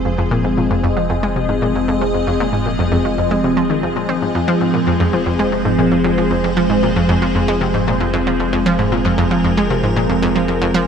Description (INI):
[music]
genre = ambient, sequencer-driven space music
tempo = 115 BPM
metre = 4/4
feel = straight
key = F minor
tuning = A4 = 435 Hz
[part]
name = evolving wavetable pad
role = sustained chords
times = 0.0-10.9 s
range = F3 to Eb5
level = -17 LUFS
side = equal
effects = ensemble chorus, built-in reverb, phaser
[part]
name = analog pluck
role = riff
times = 0.0-10.8 s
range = F2 to C4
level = -18 LUFS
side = equal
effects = chorus, ping-pong delay
[part]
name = round analog bass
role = bass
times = 0.0-10.9 s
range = F1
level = -26 LUFS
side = equal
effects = none
[sound]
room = wet plate reverb, RT60 3.0 s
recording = none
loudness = -14 LUFS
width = side -7 dB against mid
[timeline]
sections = 0.0-10.9 A section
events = none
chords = 0.0 Fm